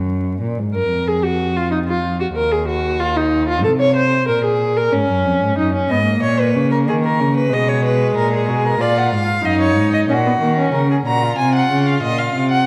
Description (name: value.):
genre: classical, baroque-style fugue for string quartet.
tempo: 93 BPM.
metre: 4/4.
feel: straight.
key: Eb minor.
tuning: A4 = 443 Hz.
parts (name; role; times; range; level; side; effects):
warm cello; bass; 0.0-12.7 s; Eb2 to D#3; -21 LUFS; equal; none.
warm viola; accompaniment; 0.7-10.7 s; G#3 to Db5; -20 LUFS; equal; none.
rich violin; second line; 5.9-12.7 s; F4 to Gb5; -22 LUFS; equal; none.
rich violin; melody; 11.1-12.7 s; Eb5 to Bb5; -21 LUFS; equal; none.
room: moderate scoring stage reverb, RT60 1.5 s.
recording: vinyl crackle.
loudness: -17 LUFS.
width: mono.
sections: 0.0-12.7 A section.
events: none.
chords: 0.4 Bb5; 1.7 Ebmadd9; 3.0 F7(no3)/Eb; 4.3 Bbm; 5.6 Ebm/Gb; 6.9 Bmaj13; 8.2 Bb7(no3); 9.4 Ebm/Gb; 10.7 Bbm; 12.0 Cm7b5/Bb.